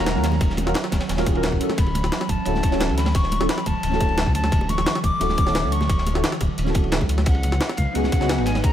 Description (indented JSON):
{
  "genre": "liquid drum and bass",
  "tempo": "175 BPM",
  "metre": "4/4",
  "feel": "straight",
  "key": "unclear",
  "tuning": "A4 = 439 Hz",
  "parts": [
    { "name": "silver concert flute", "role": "melody", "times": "0.0-8.7 s", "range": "E#5 to D6", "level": "-28 LUFS", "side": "left 2 dB", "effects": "dub echo" },
    { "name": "deep mellow chord stab", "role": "accompaniment", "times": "0.0-8.5 s", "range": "B3 to A#4", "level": "-27 LUFS", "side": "equal", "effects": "chorus, phaser, dub echo" },
    { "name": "airy breathy pad", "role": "sustained chords", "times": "0.0-8.7 s", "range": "D3 to B4", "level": "-30 LUFS", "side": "right 2 dB", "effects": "chorus, sidechain pumping" },
    { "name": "dark detuned saw bass", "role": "bass", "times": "0.0-8.7 s", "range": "D1 to D#2", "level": "-24 LUFS", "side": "equal", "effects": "none" },
    { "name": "crunchy breakbeat drum kit", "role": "drums", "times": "0.1-8.7 s", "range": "ride cymbal, snare drum", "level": "-33 LUFS", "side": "equal", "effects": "high-pass filter on cymbals, small room ambience, high-pass filter on snare, high-pass filter on room" },
    { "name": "jungle sampler-style drum kit", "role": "drums", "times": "0.1-8.7 s", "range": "hi-hat, snare drum", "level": "-27 LUFS", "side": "equal", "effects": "small room ambience" },
    { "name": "congas and bongos", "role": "percussion", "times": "0.1-8.6 s", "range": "none", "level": "-33 LUFS", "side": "right 1 dB", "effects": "none" },
    { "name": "electronic kick drum", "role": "drums", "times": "0.4-8.7 s", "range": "none", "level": "-21 LUFS", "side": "equal", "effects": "small room ambience" }
  ],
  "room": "small room ambience",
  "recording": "none",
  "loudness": "-19 LUFS",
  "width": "side -10 dB against mid",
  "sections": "0.0-8.7 A section",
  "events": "none",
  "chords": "0.0 D#m7; 1.6 Dmaj9; 7.3 C#9sus4",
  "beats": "0.07 | 0.41 0.75 1.09 1.44 | 1.78 2.12 2.46 2.81 | 3.15 3.49 3.84 4.18 | 4.52 4.87 5.21 5.55 | 5.89 6.24 6.58 6.92 | 7.26 7.61 7.95 8.29 | 8.64"
}